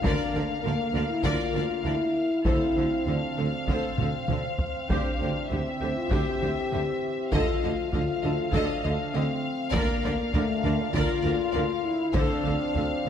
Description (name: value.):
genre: cinematic, epic orchestral film score.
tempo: 99 BPM.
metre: 4/4.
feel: straight.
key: unclear.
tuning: A4 = 440 Hz.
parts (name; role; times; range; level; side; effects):
rich symphonic violin section; melody; 0.0-13.1 s; E5 to F5; -34 LUFS; left 4 dB; none.
rich symphonic viola section; accompaniment; 0.0-13.1 s; G4 to Bb4; -36 LUFS; equal; none.
mellow French horn section; sustained chords; 0.0-13.1 s; A3 to G4; -29 LUFS; left 3 dB; none.
clear symphonic cello section; bass; 0.0-13.1 s; D3; -35 LUFS; right 3 dB; none.
mellow tuba; bass; 0.0-13.1 s; D2; -34 LUFS; right 3 dB; none.
rich symphonic double bass section; bass; 0.0-13.1 s; D2; -34 LUFS; right 2 dB; none.
taiko ensemble; drums; 0.0-13.0 s; none; -30 LUFS; equal; none.
rich symphonic violin section; second line; 0.1-13.1 s; C5 to Eb5; -36 LUFS; left 2 dB; none.
clear trombone section; sustained chords; 0.1-13.1 s; Bb2 to C4; -36 LUFS; right 4 dB; none.
room: moderate scoring stage reverb, RT60 1.5 s.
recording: none.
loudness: -24 LUFS.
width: side -8 dB against mid.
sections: 0.0-13.1 A section.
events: drum fill 4.0-4.9.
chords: 0.0 Bb/D; 2.5 Dm7; 4.9 C/D; 7.3 F7/D; 9.7 Bb/D; 12.1 Dm7.